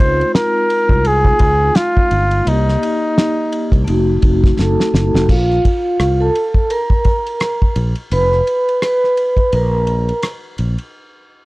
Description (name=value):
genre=hip hop, jazz-hop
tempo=85 BPM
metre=4/4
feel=swing 58% on 16ths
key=Bb major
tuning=A4 = 444 Hz
part: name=mellow flugelhorn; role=melody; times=0.0-3.9 s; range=Eb4 to C5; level=-16 LUFS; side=equal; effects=none
part: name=vibraphone with soft mallets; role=accompaniment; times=0.0-10.2 s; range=Ab3 to Cb6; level=-17 LUFS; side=equal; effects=none
part: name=fretless electric bass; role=bass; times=0.0-10.8 s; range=F1 to Db2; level=-16 LUFS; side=equal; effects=none
part: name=cloth-damped thuddy drum kit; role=drums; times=0.0-10.9 s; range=crash cymbal, hi-hat, kick drum, ride cymbal, rim click, snare drum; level=-15 LUFS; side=equal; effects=none
room=little or no reverb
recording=dry, gritty hardware recording, cassette tape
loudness=-13 LUFS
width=side -21 dB against mid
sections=0.0-5.3 A section; 5.3-10.9 B section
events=drum fill 4.6-5.3; vibraphone solo 5.3-10.9; break 9.5-10.9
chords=0.0 Dbmaj9; 2.5 Cm7; 3.9 F7b9; 5.3 Bb5; 8.1 N.C.